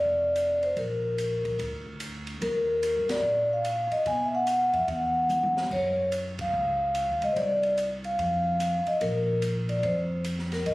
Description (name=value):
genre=jazz, small-group swing and bop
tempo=146 BPM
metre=4/4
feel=swing 65% on 8ths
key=unclear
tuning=A4 = 438 Hz
part: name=vibraphone with soft mallets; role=melody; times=0.0-10.7 s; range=Bb4 to Ab5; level=-25 LUFS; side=equal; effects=none
part: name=upright bass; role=bass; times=0.0-10.7 s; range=F1 to B2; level=-33 LUFS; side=equal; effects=none
part: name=open jazz drum kit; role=drums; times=0.4-10.7 s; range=crash cymbal, hi-hat, kick drum, ride cymbal, snare drum, toms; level=-39 LUFS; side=right 1 dB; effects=none
room=light reverb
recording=recorded on a phone in the room, studio reverb, compression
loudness=-24 LUFS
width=side -19 dB against mid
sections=0.0-10.7 A section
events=band accent 3.0, 6.3; drum fill 5.3-5.7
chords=0.0 Bb; 2.4 Ebmaj7(no3); 4.1 B5; 4.9 Esus2; 5.7 Gb5; 7.4 Csus2; 8.2 N.C.; 9.0 Bb5